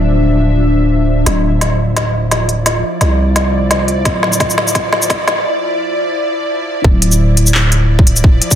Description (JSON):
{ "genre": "half-time drum and bass", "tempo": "172 BPM", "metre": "4/4", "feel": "swing 56% on 16ths, half-time", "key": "D minor", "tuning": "A4 = 440 Hz", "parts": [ { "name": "bowed-like drone", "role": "sustained chords", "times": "0.0-8.6 s", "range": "F3 to E5", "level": "-18 LUFS", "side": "left 1 dB", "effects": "built-in reverb, sidechain pumping" }, { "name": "growling 808-style bass", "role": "bass", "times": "0.0-8.4 s", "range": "D1 to C2", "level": "-14 LUFS", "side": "equal", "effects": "tube saturation" }, { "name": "organic electronic drum kit", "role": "drums", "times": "1.3-8.6 s", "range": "handclaps, hi-hat, shaker, snare drum", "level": "-15 LUFS", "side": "left 1 dB", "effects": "overdrive" }, { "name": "electronic kick drum", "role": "drums", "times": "4.1-8.6 s", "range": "none", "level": "-11 LUFS", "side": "equal", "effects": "none" } ], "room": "moderate lush hall reverb, RT60 2.1 s", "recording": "dense, heavily limited modern master, high-pass filter", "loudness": "-11 LUFS", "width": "side -10 dB against mid", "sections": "0.0-1.3 A section; 1.3-6.8 B section; 6.8-8.6 C section", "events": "build-up 1.3-6.8; drum fill 1.3-5.5; break 5.5-6.8; drop 6.8-8.6", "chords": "0.0 Dmadd9", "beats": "0.22 0.57 0.92 | 1.26 1.61 1.96 2.31 | 2.66 3.01 3.36 3.71 | 4.05 4.40 4.75 5.10 | 5.45 5.80 6.15 6.50 | 6.85 7.20 7.54 7.89 | 8.24" }